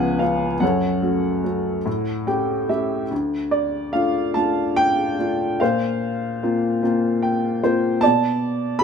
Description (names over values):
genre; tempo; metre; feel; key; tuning
classical, lyrical solo piano; 49 BPM (dotted quarters); 6/8; uneven beats, rubato; D minor from 3.1 s; A4 = 436 Hz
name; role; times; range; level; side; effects
warm upright piano; solo; 0.0-8.8 s; C#2 to B5; -19 LUFS; equal; none
room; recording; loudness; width
light reverb; none; -19 LUFS; side -6 dB against mid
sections
0.0-3.1 A section; 3.1-8.8 B section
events
upright piano fill 1.9-3.1, 6.8-8.0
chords
0.0 C#7; 0.6 F#m; 1.9 A7; 3.1 Dm; 5.6 Bbsus2; 8.0 Gadd9/B (rootless)